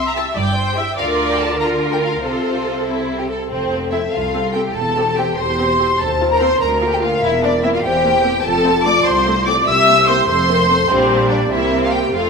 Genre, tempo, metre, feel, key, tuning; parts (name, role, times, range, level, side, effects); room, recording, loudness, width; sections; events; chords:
quick classical-period movement for symphony orchestra; 97 BPM (dotted quarters); 6/8; straight; F major; A4 = 440 Hz
warm studio violin section; melody; 0.0-12.3 s; C5 to E6; -22 LUFS; left 1 dB
warm studio viola section; accompaniment; 0.0-12.3 s; G3 to E5; -23 LUFS; right 1 dB
clear studio cello section; bass; 0.0-12.3 s; C2 to D3; -24 LUFS; right 1 dB
rich studio double bass section; bass; 0.0-12.3 s; E1 to Eb2; -26 LUFS; right 3 dB
rich studio violin section; second line; 0.2-12.3 s; C4 to E5; -21 LUFS; left 1 dB
flute section; second line; 3.5-12.3 s; C5 to E6; -20 LUFS; left 1 dB
mellow French horn section; sustained chords; 3.5-12.3 s; F4 to C5; -20 LUFS; left 1 dB
wet scoring stage reverb, RT60 1.7 s; minimal, uncompressed stereo recording; -14 LUFS; side -5 dB against mid
0.0-3.5 A section; 3.5-12.3 B section
0.0 C; 1.0 Bb/D; 2.2 F/C; 3.5 F; 4.7 C/E; 6.0 F7/Eb; 6.6 Bb/D; 7.2 C7/E; 8.4 F; 9.7 C7; 10.3 F; 10.9 Gm/Bb; 11.5 C7